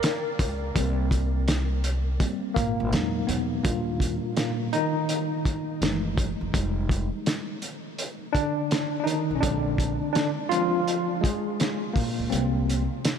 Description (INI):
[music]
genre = hip hop, jazz-hop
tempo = 83 BPM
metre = 4/4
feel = swing 65% on 16ths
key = Eb major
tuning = A4 = 440 Hz
[part]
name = tine electric piano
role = accompaniment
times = 0.0-13.2 s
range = Bb2 to Bb4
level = -26 LUFS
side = equal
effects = overdrive, fast stereo tremolo
[part]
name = cloth-damped thuddy drum kit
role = drums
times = 0.0-13.2 s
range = hi-hat, kick drum, snare drum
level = -28 LUFS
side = equal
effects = none
[part]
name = upright bass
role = bass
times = 0.4-12.8 s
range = F1 to E2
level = -28 LUFS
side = equal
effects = none
[sound]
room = moderate huge ambient reverb, RT60 7.5 s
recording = dreamy mix soaked in reverb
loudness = -24 LUFS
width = side -7 dB against mid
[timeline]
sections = 0.0-3.6 A section; 3.6-13.2 B section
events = tine electric piano solo 0.0-3.6, 3.6-13.2; kick muted 12.3-13.2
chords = 0.0 N.C.; 0.8 Abmaj9/C (rootless); 2.9 Emaj7; 3.6 Ebmaj7; 5.8 Gbm7; 6.5 Fm7; 9.4 Bb7; 12.3 Gmadd11/C